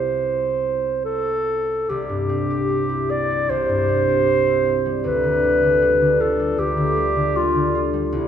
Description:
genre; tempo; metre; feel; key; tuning
classical, romantic duo for clarinet and harp; 70-79 BPM; 4/4; rubato; C major; A4 = 440 Hz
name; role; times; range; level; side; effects
warm clarinet; melody; 0.0-8.3 s; E4 to D5; -19 LUFS; equal; none
concert harp; accompaniment; 0.0-8.3 s; C2 to G4; -22 LUFS; equal; none
room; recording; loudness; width
wet concert hall reverb, RT60 2.1 s; heard from further back in the room; -18 LUFS; side -9 dB against mid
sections
0.0-1.9 A section; 1.9-8.3 B section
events
none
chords
0.0 C; 5.0 G7/D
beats
0.21 1.06 | 1.90 2.71 3.50 4.28 | 5.05 5.82 6.60 7.37 | 8.14

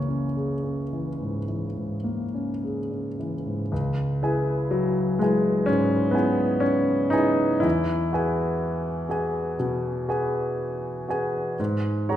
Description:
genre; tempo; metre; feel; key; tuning
classical, impressionist solo piano; 53-65 BPM; 4/4; rubato; C# minor; A4 = 443 Hz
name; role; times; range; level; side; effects
clear grand piano; solo; 0.0-12.2 s; C#2 to A#5; -23 LUFS; equal; none
room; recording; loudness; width
wet recital hall reverb, RT60 1.4 s; minimal, uncompressed stereo recording; -23 LUFS; side -11 dB against mid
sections
0.0-3.7 A section; 3.7-12.2 B section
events
none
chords
0.0 C#m6; 3.7 C#m7; 7.6 Eadd9; 11.6 G#7sus4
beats
0.36 1.49 2.62 | 3.71 4.73 5.69 6.64 | 7.64 8.62 9.60 10.60 | 11.59

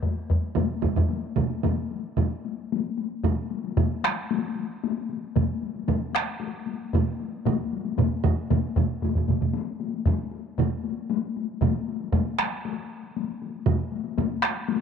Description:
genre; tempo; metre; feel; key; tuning
japanese traditional, taiko drum ensemble; 115 BPM; 4/4; straight; none; none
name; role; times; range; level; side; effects
taiko ensemble; percussion; 0.0-14.8 s; none; -29 LUFS; left 10 dB; none
taiko ensemble; percussion; 0.0-14.5 s; none; -26 LUFS; left 1 dB; none
taiko ensemble; percussion; 0.6-14.5 s; none; -27 LUFS; right 9 dB; none
room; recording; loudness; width
light reverb, small room ambience; 1960s-style stereo with parts hard left and right; -24 LUFS; side -7 dB against mid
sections
0.0-2.7 A section; 2.7-14.8 B section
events
speeding up 0.0-14.8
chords
none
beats
0.02 | 0.56 1.10 1.64 2.17 | 2.71 3.24 3.77 4.30 | 4.83 5.36 5.89 6.42 | 6.94 7.46 7.99 8.51 | 9.03 9.55 10.07 10.59 | 11.10 11.62 12.13 12.64 | 13.16 13.67 14.18 14.68

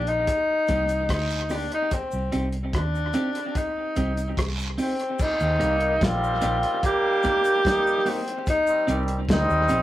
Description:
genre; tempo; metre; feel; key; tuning
roots reggae; 73 BPM; 4/4; straight; Eb major; A4 = 440 Hz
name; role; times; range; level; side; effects
warm tenor saxophone; melody; 0.0-9.8 s; C4 to G4; -24 LUFS; equal; none
clean electric guitar; accompaniment; 0.0-9.8 s; Bb3 to G4; -32 LUFS; right 1 dB; dub echo
vintage muted fingered electric bass; bass; 0.0-9.8 s; Bb1 to Eb2; -27 LUFS; equal; none
cloth-damped thuddy drum kit; drums; 0.1-9.8 s; crash cymbal, hi-hat, kick drum, rim click, snare drum; -28 LUFS; equal; dub echo
cabasa and guiro; percussion; 0.3-9.8 s; none; -39 LUFS; right 3 dB; none
muted trombone section; second line; 5.4-9.8 s; Eb3 to Eb4; -27 LUFS; right 1 dB; none
room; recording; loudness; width
moderate small room reverb, RT60 0.6 s; rough rehearsal-room recording, vinyl crackle; -21 LUFS; side -14 dB against mid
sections
0.0-5.2 A section; 5.2-9.8 B section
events
none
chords
0.0 Eb; 1.9 Cm; 5.2 Eb; 8.5 Cm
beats
0.27 1.09 | 1.91 2.73 3.55 4.37 | 5.19 6.01 6.83 7.65 | 8.47 9.28

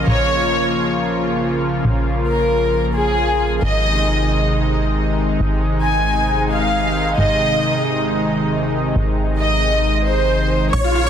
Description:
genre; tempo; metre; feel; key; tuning
trance; 135 BPM; 4/4; straight; unclear; A4 = 440 Hz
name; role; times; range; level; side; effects
lush unison pad; sustained chords; 0.0-11.1 s; C3 to F4; -20 LUFS; equal; chorus
plucky analog bass; bass; 0.0-11.1 s; Ab1 to Bb1; -21 LUFS; equal; none
dark studio violin section; second line; 0.1-11.1 s; Ab4 to Ab5; -20 LUFS; equal; tape echo
big supersaw lead; melody; 10.7-11.1 s; F4 to Db5; -19 LUFS; right 1 dB; phaser
analog pluck; second line; 10.7-11.1 s; F5 to Db6; -26 LUFS; left 2 dB; chorus, vintage 12-bit sampler grit
room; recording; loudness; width
light reverb; dense, heavily limited modern master; -15 LUFS; side -8 dB against mid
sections
0.0-11.1 A section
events
none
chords
0.0 Bbm; 3.6 Ab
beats
| 0.07 0.51 0.95 1.40 | 1.84 2.29 2.73 3.18 | 3.62 4.07 4.51 4.96 | 5.40 5.84 6.29 6.73 | 7.18 7.62 8.07 8.51 | 8.96 9.40 9.84 10.29 | 10.73

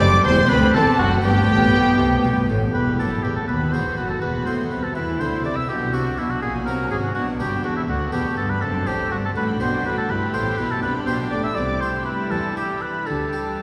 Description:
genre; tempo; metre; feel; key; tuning
classical, baroque-style concerto movement with solo episodes; 81 BPM (dotted quarters); 6/8; straight; E minor, G major from 8.6 s; A4 = 439 Hz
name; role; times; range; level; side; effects
warm oboe; melody; 0.0-13.6 s; E4 to E5; -27 LUFS; equal; none
warm studio violin section; melody; 0.0-13.6 s; E5 to E6; -32 LUFS; equal; none
rich chamber violin section; second line; 0.0-13.6 s; D4 to C5; -31 LUFS; equal; none
harpsichord; accompaniment; 0.0-13.6 s; D2 to G4; -31 LUFS; equal; none
warm studio viola section; accompaniment; 0.0-13.6 s; G3 to E4; -30 LUFS; equal; none
rich chamber cello section; bass; 0.0-13.6 s; D2 to E3; -28 LUFS; equal; none
warm chamber double bass section; bass; 0.0-13.6 s; E1 to E2; -29 LUFS; equal; none
room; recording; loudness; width
wet cathedral reverb, RT60 5.0 s; recorded in a church or concert hall; -21 LUFS; mono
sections
0.0-2.7 A section; 2.7-13.6 B section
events
none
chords
0.5 D7; 1.2 G; 2.7 Em; 3.5 B; 4.2 E5; 5.7 Bm; 6.4 F#/A#; 7.2 Bm; 8.6 D7/F#; 10.1 G; 11.6 C; 13.1 Dsus4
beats
0.49 | 1.24 1.99 | 2.74 3.48 | 4.22 4.95 | 5.69 6.42 | 7.15 7.89 | 8.62 9.36 | 10.09 10.83 | 11.57 12.32 | 13.07

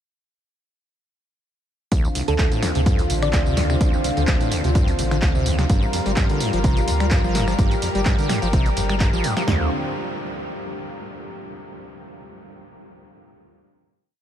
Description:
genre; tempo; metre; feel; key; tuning
acid house; 127 BPM; 4/4; swing 54% on 16ths; D minor; A4 = 440 Hz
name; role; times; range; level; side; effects
lush unison pad; sustained chords; 1.9-9.7 s; D3 to Bb4; -27 LUFS; left 1 dB; chorus, sidechain pumping
acid bass, saw; riff; 1.9-9.7 s; C2 to G3; -25 LUFS; equal; overdrive, wide subtle chorus, sidechain pumping, tape echo
warm sub bass; bass; 1.9-9.7 s; G1 to D2; -24 LUFS; equal; sidechain pumping
punchy analog drum machine; drums; 1.9-9.6 s; kick drum, snare drum, toms; -20 LUFS; equal; none
punchy analog drum machine; drums; 1.9-9.5 s; finger snaps, handclaps, hi-hat, snare drum, tambourine; -28 LUFS; right 1 dB; none
thumb-piano-like synth pluck; melody; 2.3-3.4 s; A4 to D5; -30 LUFS; right 1 dB; chorus, tape echo
room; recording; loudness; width
moderate huge ambient reverb, RT60 9.1 s; dreamy mix soaked in reverb; -18 LUFS; side -10 dB against mid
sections
1.9-9.5 drop; 9.5-11.4 final chord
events
drop 1.9-9.5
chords
1.9 Dm7; 5.7 Gm7; 9.5 Dm7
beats
| 1.92 2.39 2.86 3.33 | 3.81 4.28 4.75 5.22 | 5.70 6.17 6.64 7.11 | 7.59 8.06 8.53 9.00 | 9.48

